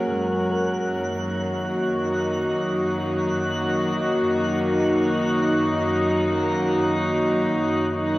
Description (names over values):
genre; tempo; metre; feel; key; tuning
ambient; free time; none; none; F# major; A4 = 440 Hz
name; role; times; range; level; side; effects
warm studio string section; sustained chords; 0.0-8.2 s; F#2 to A#4; -22 LUFS; equal; cassette tape, shimmer reverb
handpan; arpeggios; 0.0-3.2 s; G#3 to A#4; -33 LUFS; equal; cassette tape, analog delay, shimmer reverb
hand-pumped harmonium; drone; 0.0-8.2 s; F#3; -27 LUFS; equal; cassette tape
twinkling granular texture; texture; 0.0-8.2 s; F#6; -34 LUFS; equal; built-in reverb, cassette tape, shimmer reverb
room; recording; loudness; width
wet booth ambience, RT60 0.2 s; home recording on cassette; -20 LUFS; side -17 dB against mid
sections
0.0-8.2 A section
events
none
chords
0.0 F#add9